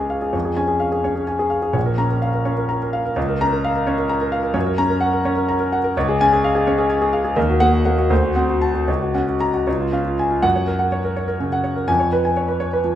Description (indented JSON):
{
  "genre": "classical, virtuoso piano study",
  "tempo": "75-88 BPM (dotted quarters)",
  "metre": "6/8",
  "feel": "rubato",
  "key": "F# major from 4.5 s",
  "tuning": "A4 = 440 Hz",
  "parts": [
    { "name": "warm concert grand piano", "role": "solo", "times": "0.0-13.0 s", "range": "Bb1 to Bb5", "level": "-17 LUFS", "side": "equal", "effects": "none" }
  ],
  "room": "moderate recital hall reverb, RT60 1.2 s",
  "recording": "small room ambience",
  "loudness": "-17 LUFS",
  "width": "side -11 dB against mid",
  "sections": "0.0-10.4 A section; 10.4-13.0 B section",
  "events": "none",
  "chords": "0.3 Db/F; 1.8 Bbm; 3.2 Bbm/Db; 4.5 F#; 6.0 C#; 7.4 D#m; 8.1 D7; 8.9 F#/C#; 9.7 C#; 10.4 F#; 11.9 C#7/E#",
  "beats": "| 0.34 1.05 | 1.76 2.46 | 3.17 3.86 | 4.55 5.25 | 5.95 6.66 | 7.36 8.10 | 8.88 9.67 | 10.44 11.17 | 11.89 12.60"
}